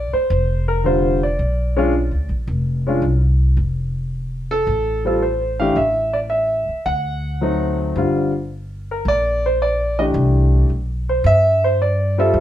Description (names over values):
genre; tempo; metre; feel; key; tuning
jazz piano trio; 110 BPM; 4/4; swing 69% on 8ths; unclear; A4 = 436 Hz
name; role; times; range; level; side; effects
warm grand piano; melody; 0.0-12.4 s; D3 to F#5; -18 LUFS; equal; none
upright bass; bass; 0.0-12.4 s; F1 to G2; -20 LUFS; equal; none
room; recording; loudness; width
wet studio reverb, RT60 0.8 s; heard from further back in the room; -16 LUFS; side -12 dB against mid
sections
0.0-12.4 A section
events
none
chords
0.0 Bb (rootless); 1.4 Bdim; 3.6 F; 5.8 A5; 6.9 D7b9; 8.0 Gm; 10.2 C